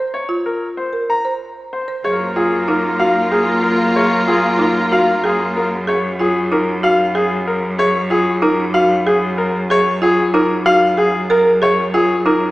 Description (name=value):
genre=classical, minimalist pattern music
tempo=188 BPM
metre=6/4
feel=straight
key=F# major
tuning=A4 = 439 Hz
part: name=folk marimba with medium hard mallets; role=arpeggios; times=0.0-12.5 s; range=D#4 to C5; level=-18 LUFS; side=right 1 dB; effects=none
part: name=bright grand piano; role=melody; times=0.1-12.5 s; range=G#4 to Bb5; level=-18 LUFS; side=left 2 dB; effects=none
part: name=clear soprano saxophone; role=second line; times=2.0-5.7 s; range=A#4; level=-21 LUFS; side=right 1 dB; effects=none
part: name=rich studio string section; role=sustained chords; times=2.1-5.7 s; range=A#3 to E#4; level=-20 LUFS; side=left 1 dB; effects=none
part: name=rich cello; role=bass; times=2.1-12.5 s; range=F#2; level=-23 LUFS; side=equal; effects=none
room=wet concert hall reverb, RT60 2.0 s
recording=recorded in a church or concert hall, small speaker sound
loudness=-13 LUFS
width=side -18 dB against mid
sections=0.0-2.0 A section; 2.0-12.5 B section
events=none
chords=0.0 Bb5; 2.0 F#maj9